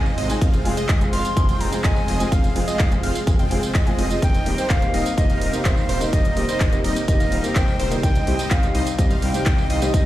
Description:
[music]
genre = EDM, festival progressive house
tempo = 126 BPM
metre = 4/4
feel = straight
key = unclear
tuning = A4 = 440 Hz
[part]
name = bright reedy jazz flute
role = melody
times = 0.0-10.1 s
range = Eb5 to C6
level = -29 LUFS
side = left 1 dB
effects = ping-pong delay
[part]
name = lush unison pad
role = sustained chords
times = 0.1-10.1 s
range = C3 to Ab4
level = -30 LUFS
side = equal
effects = chorus, sidechain pumping
[part]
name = plucky unison lead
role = arpeggios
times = 0.0-10.1 s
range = C5 to G5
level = -31 LUFS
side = right 2 dB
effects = lush chorus, sidechain pumping, ping-pong delay
[part]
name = supersaw chords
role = riff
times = 0.0-10.1 s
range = G3 to G5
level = -28 LUFS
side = equal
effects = sidechain pumping
[part]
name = big-room dance drum kit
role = drums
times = 0.1-10.0 s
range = handclaps, hi-hat, ride cymbal, tambourine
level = -30 LUFS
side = equal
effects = none
[part]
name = wide detuned saw bass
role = bass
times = 0.2-10.1 s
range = Eb1 to C2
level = -26 LUFS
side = equal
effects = chorus, tube saturation, sidechain pumping
[part]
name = warm concert grand piano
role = accompaniment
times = 0.3-9.9 s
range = G3 to Ab4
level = -29 LUFS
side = equal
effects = sidechain pumping
[part]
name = electronic kick drum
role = drums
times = 0.4-10.0 s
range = none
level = -18 LUFS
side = equal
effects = none
[sound]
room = digital ambience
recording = played on a big sound system in a bare room, large studio reverb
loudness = -17 LUFS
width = side -14 dB against mid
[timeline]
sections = 0.0-10.1 A section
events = none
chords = 0.4 Fm; 4.2 Eb6; 8.0 Cm

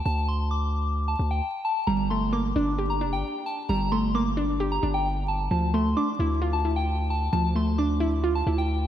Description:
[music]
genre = hip hop, trap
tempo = 132 BPM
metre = 4/4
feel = half-time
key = G dorian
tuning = A4 = 440 Hz
[part]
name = soft synth bell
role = melody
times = 0.0-8.9 s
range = G5 to D6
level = -29 LUFS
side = left 2 dB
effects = chorus, phaser, low-pass filter
[part]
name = long sustained 808-style bass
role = bass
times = 0.1-8.9 s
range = F1 to D2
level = -26 LUFS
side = equal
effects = none
[part]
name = soft round pluck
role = accompaniment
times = 1.9-8.9 s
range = F3 to G4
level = -26 LUFS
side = right 1 dB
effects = chorus, low-pass filter
[sound]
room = moderate lush hall reverb, RT60 2.7 s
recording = dreamy mix soaked in reverb, vinyl crackle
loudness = -23 LUFS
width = side -10 dB against mid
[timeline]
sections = 0.0-1.9 A section; 1.9-8.9 B section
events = none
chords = 0.0 D5; 1.9 Gmadd9; 5.5 Dmadd9

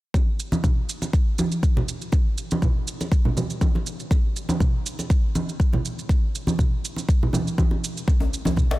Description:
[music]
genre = afro house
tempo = 121 BPM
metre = 4/4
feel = swing 53% on 16ths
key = none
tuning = none
[part]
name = electronic kick drum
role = drums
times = 0.1-8.7 s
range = none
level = -20 LUFS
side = equal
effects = none
[part]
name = congas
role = percussion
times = 0.1-8.7 s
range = none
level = -26 LUFS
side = right 1 dB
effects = none
[part]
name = shaker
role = drums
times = 0.2-8.7 s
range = none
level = -34 LUFS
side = right 5 dB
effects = none
[part]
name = djembe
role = percussion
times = 8.2-8.8 s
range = none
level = -27 LUFS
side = left 3 dB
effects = none
[sound]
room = light reverb, studio reverb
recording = none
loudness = -20 LUFS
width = side -18 dB against mid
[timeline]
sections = 0.1-8.8 A section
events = none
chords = none

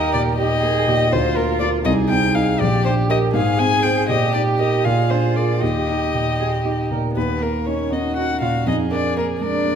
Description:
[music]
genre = quick classical-period movement for piano quartet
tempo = 80 BPM (dotted quarters)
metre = 6/8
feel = straight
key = Eb major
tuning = A4 = 440 Hz
[part]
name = muted violin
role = melody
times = 0.0-9.8 s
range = Bb4 to Ab5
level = -22 LUFS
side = left 4 dB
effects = none
[part]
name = muted cello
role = second line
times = 0.0-9.8 s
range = Bb3 to Bb4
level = -25 LUFS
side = right 9 dB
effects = none
[part]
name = muted violin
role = second line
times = 0.0-9.8 s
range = F4 to Bb4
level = -27 LUFS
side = equal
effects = none
[part]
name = dark baby grand piano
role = accompaniment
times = 0.0-9.8 s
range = Bb1 to C5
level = -20 LUFS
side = equal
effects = none
[sound]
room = wet recital hall reverb, RT60 1.6 s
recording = none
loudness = -17 LUFS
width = side -7 dB against mid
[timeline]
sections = 0.0-7.2 A section; 7.2-9.8 B section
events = none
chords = 0.0 Eb; 1.1 Bb/D; 1.9 Ab/C; 2.6 Gm/Bb; 3.3 Abmaj7; 4.1 Eb/Bb; 4.8 Bb7; 5.6 Eb; 7.2 Ebm; 8.7 Bb7/F

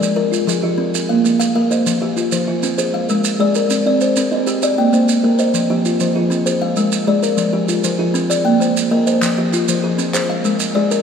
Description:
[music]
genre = southern african traditional, mbira-style interlocking cycle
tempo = 130 BPM (dotted quarters)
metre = 12/8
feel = straight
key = F dorian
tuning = A4 = 438 Hz
[part]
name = kalimba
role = arpeggios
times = 0.0-11.0 s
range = F3 to G5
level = -16 LUFS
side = left 2 dB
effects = none
[part]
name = kalimba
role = arpeggios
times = 0.0-11.0 s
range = F3 to Eb5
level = -20 LUFS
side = right 4 dB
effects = none
[part]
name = maracas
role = percussion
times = 0.0-11.0 s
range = none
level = -25 LUFS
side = right 8 dB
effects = none
[part]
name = group handclap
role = percussion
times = 9.2-10.8 s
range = none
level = -27 LUFS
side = left 1 dB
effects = none
[sound]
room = wet cathedral reverb, RT60 5.0 s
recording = recorded in a church or concert hall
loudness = -14 LUFS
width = side -7 dB against mid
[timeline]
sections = 0.0-1.9 A section; 1.9-11.0 B section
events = none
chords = 0.0 Fm; 0.9 Bb5; 1.9 F5; 2.8 Ab; 3.7 Cm; 4.6 Bb; 5.5 Fm; 6.5 Ab; 7.4 Fm; 8.3 Bb; 9.2 Fm; 10.1 Ab

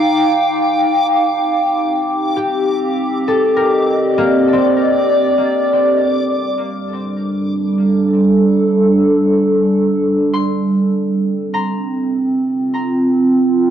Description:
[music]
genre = ambient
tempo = free time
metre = none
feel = none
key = G minor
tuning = A4 = 439 Hz
[part]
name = warbly tape-like pad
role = sustained chords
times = 0.0-13.7 s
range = G3 to G5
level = -13 LUFS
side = right 1 dB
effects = chorus, built-in reverb, cassette tape
[part]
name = concert harp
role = arpeggios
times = 0.0-13.7 s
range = Bb3 to C6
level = -22 LUFS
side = left 2 dB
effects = cassette tape, tape echo
[part]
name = backwards swelling texture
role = texture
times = 0.0-6.1 s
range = D6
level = -28 LUFS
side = left 1 dB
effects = built-in reverb, cassette tape
[sound]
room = wet booth ambience, RT60 0.3 s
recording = home recording on cassette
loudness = -13 LUFS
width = side -9 dB against mid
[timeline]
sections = 0.0-6.1 A section; 6.1-13.7 B section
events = filter sweep on ambient pad 6.1-13.7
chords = 0.0 Cmadd9; 6.1 Gmadd9; 10.9 Bbsus2

